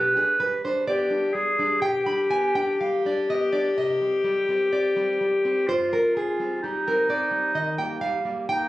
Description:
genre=romantic duo for clarinet and classical guitar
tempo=63 BPM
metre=4/4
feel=rubato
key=C minor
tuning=A4 = 440 Hz
part: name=clear clarinet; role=melody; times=0.0-8.7 s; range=Eb4 to B4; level=-23 LUFS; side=left 1 dB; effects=none
part: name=nylon-string guitar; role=accompaniment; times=0.0-8.7 s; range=G2 to B5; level=-26 LUFS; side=right 1 dB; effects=none
room=light reverb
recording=recorded on a phone in the room, club ambience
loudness=-21 LUFS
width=side -16 dB against mid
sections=0.0-8.7 A section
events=none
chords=0.0 G/B; 3.7 Cm; 7.5 Eb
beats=0.85 1.80 2.78 | 3.74 4.70 5.67 6.62 | 7.54 8.48

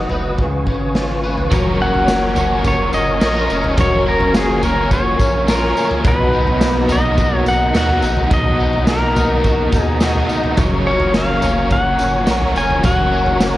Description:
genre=dream pop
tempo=106 BPM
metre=4/4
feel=straight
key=F# major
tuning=A4 = 440 Hz
part: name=mellow tonewheel organ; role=sustained chords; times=0.0-13.6 s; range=A#4 to D#6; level=-25 LUFS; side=equal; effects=chorus vibrato, fast rotary speaker
part: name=electric guitar at the edge of break-up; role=arpeggios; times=0.0-13.6 s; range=B2 to B4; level=-21 LUFS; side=left 2 dB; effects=ensemble chorus, tape echo
part: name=round analog bass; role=bass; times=0.0-13.6 s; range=E#1 to D#2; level=-22 LUFS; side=equal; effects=tube saturation
part: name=raw garage drum kit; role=drums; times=0.1-13.5 s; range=kick drum, snare drum, tambourine, toms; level=-19 LUFS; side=equal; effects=none
part: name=overdriven electric guitar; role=accompaniment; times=1.5-13.6 s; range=F#2 to A#4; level=-23 LUFS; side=right 2 dB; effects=tremolo, analog chorus
part: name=pedal steel guitar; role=melody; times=1.8-13.6 s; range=G#4 to G#5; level=-18 LUFS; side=equal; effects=tape echo
room=moderate scoring stage reverb, RT60 2.0 s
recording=worn, warbling old tape, cassette tape, warbly pitch drift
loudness=-13 LUFS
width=side -15 dB against mid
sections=0.0-1.5 A section; 1.5-13.6 B section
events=none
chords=0.4 C#7; 1.5 F#maj7; 6.0 Bmaj7; 10.6 F#maj7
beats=0.39 0.95 | 1.52 2.08 2.65 3.22 | 3.78 4.35 4.92 5.48 | 6.05 6.61 7.18 7.75 | 8.31 8.88 9.44 10.01 | 10.58 11.14 11.71 12.27 | 12.84 13.41

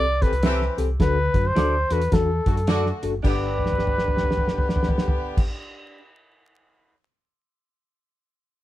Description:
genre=uptempo 1960s-style soul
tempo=107 BPM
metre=4/4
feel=swing 61% on 8ths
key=G major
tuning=A4 = 440 Hz
part: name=breathy trumpet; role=melody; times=0.0-5.4 s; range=A4 to D5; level=-25 LUFS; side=equal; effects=none
part: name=reed electric piano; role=accompaniment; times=0.0-5.4 s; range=G2 to B4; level=-30 LUFS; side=left 5 dB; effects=overdrive, fast tremolo
part: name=hollow-body short-scale fingered electric bass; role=bass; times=0.0-5.4 s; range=F#1 to F#2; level=-26 LUFS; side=equal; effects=none
part: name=warm horn section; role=second line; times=0.2-5.4 s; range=D3 to G4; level=-33 LUFS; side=left 1 dB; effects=none
part: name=cloth-damped thuddy drum kit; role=drums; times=0.2-6.9 s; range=crash cymbal, hi-hat, kick drum, snare drum, toms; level=-23 LUFS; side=equal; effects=none
part: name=electric guitar through a small old amp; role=stabs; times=0.4-6.0 s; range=C4 to E5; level=-32 LUFS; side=right 4 dB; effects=none
room=light reverb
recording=band playing live in one room, vinyl crackle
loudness=-20 LUFS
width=side -14 dB against mid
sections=0.0-3.2 A section; 3.2-5.5 B section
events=drum fill 3.5-5.3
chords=0.0 Am7; 1.0 D; 3.2 G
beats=0.43 | 0.99 1.55 2.12 2.68 | 3.24 3.80 4.36 4.92

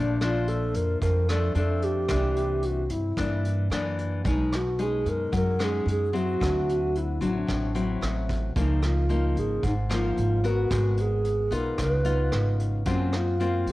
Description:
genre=bossa nova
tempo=111 BPM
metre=4/4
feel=straight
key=unclear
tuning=A4 = 439 Hz
part: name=mellow hollow alto flute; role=melody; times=0.0-13.7 s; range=Db4 to Cb5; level=-28 LUFS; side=right 1 dB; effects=cassette tape
part: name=nylon-string guitar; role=accompaniment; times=0.0-13.7 s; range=F2 to Bb4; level=-30 LUFS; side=left 4 dB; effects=cassette tape
part: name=upright bass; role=bass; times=0.0-13.7 s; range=Ab1 to G2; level=-27 LUFS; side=right 1 dB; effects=none
part: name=vintage brush drum kit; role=drums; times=0.2-13.7 s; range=hi-hat, kick drum, rim click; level=-34 LUFS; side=right 1 dB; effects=cassette tape
room=small room ambience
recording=home recording on cassette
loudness=-23 LUFS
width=side -17 dB against mid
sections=0.0-13.7 A section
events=none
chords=0.0 Bbmaj7; 2.1 C9; 4.2 B69; 6.4 D9; 8.6 Db69; 10.7 Abm9; 11.8 Db9; 12.9 Gbmaj7#11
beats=0.48 1.02 1.56 | 2.10 2.63 3.17 3.71 | 4.25 4.79 5.33 5.87 | 6.40 6.94 7.48 8.02 | 8.55 9.09 9.63 10.17 | 10.71 11.25 11.79 12.32 | 12.86 13.40

